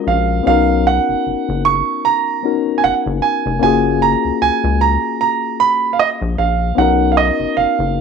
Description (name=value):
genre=R&B, neo-soul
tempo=76 BPM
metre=4/4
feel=swing 56% on 16ths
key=unclear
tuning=A4 = 439 Hz
part: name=barky reed electric piano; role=accompaniment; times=0.0-8.0 s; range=G#3 to A#4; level=-19 LUFS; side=left 12 dB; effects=none
part: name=warm concert grand piano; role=melody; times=0.1-8.0 s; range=D#5 to C#6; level=-16 LUFS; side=right 9 dB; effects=slapback echo
part: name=rubbery square bass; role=bass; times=0.1-8.0 s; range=E#1 to C#2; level=-19 LUFS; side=left 2 dB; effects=none
room=light reverb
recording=1960s-style stereo with parts hard left and right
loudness=-13 LUFS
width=side -6 dB against mid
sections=0.0-8.0 A section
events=none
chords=0.5 Bmaj9; 3.6 F#maj7; 6.8 Bmaj9